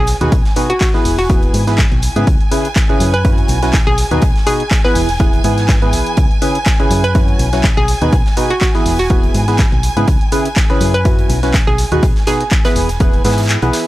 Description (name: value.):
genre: piano house.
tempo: 123 BPM.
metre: 4/4.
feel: swing 55% on 16ths.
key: unclear.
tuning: A4 = 440 Hz.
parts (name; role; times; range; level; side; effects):
hollow square pluck; melody; 0.0-12.8 s; F#4 to B4; -20 LUFS; equal; chorus, vintage 12-bit sampler grit, analog delay.
warm studio violin section; sustained chords; 0.0-13.9 s; G#5; -24 LUFS; right 2 dB; sidechain pumping.
solid FM bass; bass; 0.0-13.7 s; E1 to G#2; -17 LUFS; equal; sidechain pumping.
big rock drum kit; drums; 0.1-13.9 s; hi-hat, snare drum; -31 LUFS; right 1 dB; none.
punchy analog drum machine; drums; 0.1-13.8 s; handclaps, hi-hat; -22 LUFS; left 1 dB; none.
percussive organ stab; riff; 0.2-13.9 s; B2 to B4; -18 LUFS; equal; analog chorus, sidechain pumping, analog delay.
electronic kick drum; drums; 0.3-13.1 s; none; -14 LUFS; equal; none.
room: small room ambience.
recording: dry, gritty hardware recording, transformer saturation.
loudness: -11 LUFS.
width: side -16 dB against mid.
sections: 0.0-13.9 A section.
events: kick drops out 13.5-13.9.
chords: 0.1 B6; 1.1 E; 2.3 C#m7; 3.2 F#7sus4; 4.0 B6; 5.0 E; 6.2 C#m7; 7.2 F#7sus4; 7.9 B6; 8.9 E; 10.1 C#m7; 11.1 F#7sus4; 11.8 B6; 12.8 E.